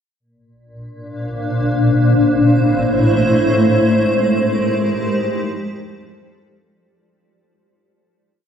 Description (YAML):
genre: ambient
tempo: free time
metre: none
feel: none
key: Bb lydian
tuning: A4 = 441 Hz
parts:
  - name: granular cloud pad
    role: solo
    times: 1.2-6.7 s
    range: A2 to C5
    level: -14 LUFS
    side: equal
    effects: built-in reverb, ping-pong delay
room: wet huge ambient reverb, RT60 7.5 s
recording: in a vast, echoing space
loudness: -13 LUFS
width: side -8 dB against mid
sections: 0.2-6.7 A section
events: fade-out 3.5-6.7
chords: 0.2 Bbadd9; 1.8 Am; 3.5 Abmaj7; 5.1 F6